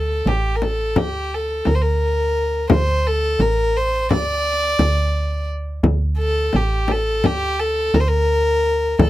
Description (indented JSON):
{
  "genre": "Turkish makam ensemble",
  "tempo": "172 BPM (eighths)",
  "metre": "9/8",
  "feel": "straight",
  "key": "D makam ussak",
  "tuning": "A4 = 438 Hz",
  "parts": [
    { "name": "clear violin", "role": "melody", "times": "0.0-9.1 s", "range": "G4 to D5", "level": "-20 LUFS", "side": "equal", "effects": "none" },
    { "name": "woody FM bass", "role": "bass", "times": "0.0-9.1 s", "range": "A1 to D2", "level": "-20 LUFS", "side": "right 1 dB", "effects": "none" },
    { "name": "frame drum", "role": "percussion", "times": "0.3-9.1 s", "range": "none", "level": "-20 LUFS", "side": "left 2 dB", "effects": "none" }
  ],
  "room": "little or no reverb",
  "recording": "close, detailed microphones",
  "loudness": "-17 LUFS",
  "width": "side -15 dB against mid",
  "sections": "0.0-9.1 A section",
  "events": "none",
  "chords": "none"
}